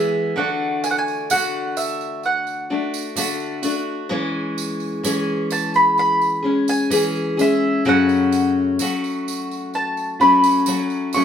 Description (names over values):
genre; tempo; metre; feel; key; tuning
acoustic folk duo or small band; 64 BPM; 4/4; straight; unclear; A4 = 441 Hz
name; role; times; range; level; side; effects
mandolin; melody; 0.0-11.2 s; E5 to C#6; -19 LUFS; equal; none
picked steel-string acoustic guitar; accompaniment; 0.0-11.2 s; F#2 to G#4; -20 LUFS; left 2 dB; none
tambourine; percussion; 0.8-11.2 s; none; -30 LUFS; right 8 dB; none
room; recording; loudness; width
wet stone room reverb, RT60 1.0 s; band playing live in one room; -17 LUFS; side -8 dB against mid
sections
0.0-11.2 A section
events
none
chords
0.4 D; 4.1 C#m/E; 7.9 F#m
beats
| 0.37 1.30 2.23 3.17 | 4.11 5.04 5.98 6.92 | 7.85 8.79 9.73 10.66